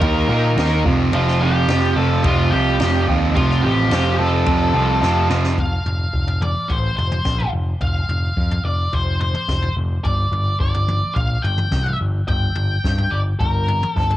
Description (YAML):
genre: quiet-loud alternative rock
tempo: 107 BPM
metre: 4/4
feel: straight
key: unclear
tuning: A4 = 440 Hz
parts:
  - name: octave-fuzz lead guitar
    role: melody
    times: 0.0-14.2 s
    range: F4 to Bb5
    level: -23 LUFS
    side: left 1 dB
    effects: distortion
  - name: distorted electric guitar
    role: riff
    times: 0.0-5.6 s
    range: F2 to Eb4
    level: -20 LUFS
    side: right 7 dB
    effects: distortion, cassette tape
  - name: heavy high-gain guitar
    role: riff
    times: 0.0-5.6 s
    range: F2 to Eb4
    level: -26 LUFS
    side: left 8 dB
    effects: distortion, cassette tape
  - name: overdriven picked electric bass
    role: bass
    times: 0.0-14.2 s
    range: F1 to Bb2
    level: -19 LUFS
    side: equal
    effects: none
  - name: jazz brush drum kit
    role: drums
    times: 0.0-14.2 s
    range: kick drum, ride cymbal, snare drum, toms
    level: -24 LUFS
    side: equal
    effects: cassette tape
room: small room ambience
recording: home recording on cassette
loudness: -16 LUFS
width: side -13 dB against mid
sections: 0.0-5.6 A section; 5.6-14.2 B section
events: drum fill 5.0-5.6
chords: 0.0 Eb5; 0.9 F; 5.6 F5; 10.0 G5